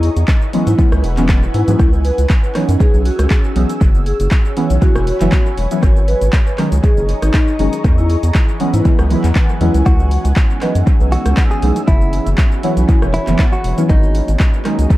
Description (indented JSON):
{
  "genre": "deep house",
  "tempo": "119 BPM",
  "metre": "4/4",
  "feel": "swing 54% on 16ths",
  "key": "C# dorian",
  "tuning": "A4 = 440 Hz",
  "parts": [
    { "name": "vibraphone with medium mallets", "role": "melody", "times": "0.0-9.9 s", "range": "D#4 to B4", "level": "-22 LUFS", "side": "left 1 dB", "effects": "dub echo" },
    { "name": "round analog bass", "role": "bass", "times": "0.0-14.9 s", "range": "E1 to G#2", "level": "-15 LUFS", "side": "equal", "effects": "sidechain pumping" },
    { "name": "punchy analog drum machine", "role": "drums", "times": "0.0-15.0 s", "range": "cabasa, handclaps, hi-hat, rim click", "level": "-26 LUFS", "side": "equal", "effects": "overdrive, dub echo" },
    { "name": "ethereal airy pad", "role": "texture", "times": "0.0-15.0 s", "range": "E3 to E6", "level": "-25 LUFS", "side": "equal", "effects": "ensemble chorus, built-in reverb, sidechain pumping" },
    { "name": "electronic kick drum", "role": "drums", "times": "0.3-15.0 s", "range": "none", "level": "-12 LUFS", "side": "equal", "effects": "none" },
    { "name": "deep mellow chord stab", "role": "stabs", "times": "0.5-15.0 s", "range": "D#3 to E4", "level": "-20 LUFS", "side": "right 1 dB", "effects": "chorus, phaser, dub echo" },
    { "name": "direct-recorded clean electric guitar", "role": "melody", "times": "9.9-14.3 s", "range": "D#4 to G#4", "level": "-24 LUFS", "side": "equal", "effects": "dub echo" },
    { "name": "airy breathy pad", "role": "sustained chords", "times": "9.9-15.0 s", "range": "E3 to G#4", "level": "-27 LUFS", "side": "right 2 dB", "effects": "chorus, sidechain pumping" },
    { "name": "congas", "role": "percussion", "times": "11.1-13.9 s", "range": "none", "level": "-26 LUFS", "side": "equal", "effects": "sidechain pumping on perc" }
  ],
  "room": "digital ambience",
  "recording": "echo-heavy mix",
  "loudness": "-11 LUFS",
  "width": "side -16 dB against mid",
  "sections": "0.0-15.0 A section",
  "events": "none",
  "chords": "0.0 E69; 1.8 C#m11; 3.8 F#7sus4; 5.8 G#7sus4; 7.8 E69; 9.9 C#m11; 11.9 F#7sus4; 13.9 G#7sus4",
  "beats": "0.28 0.79 1.29 | 1.79 2.30 2.80 3.31 | 3.81 4.32 4.82 5.32 | 5.83 6.33 6.84 7.34 | 7.84 8.35 8.85 9.36 | 9.86 10.37 10.87 11.37 | 11.88 12.38 12.89 13.39 | 13.89 14.40 14.90"
}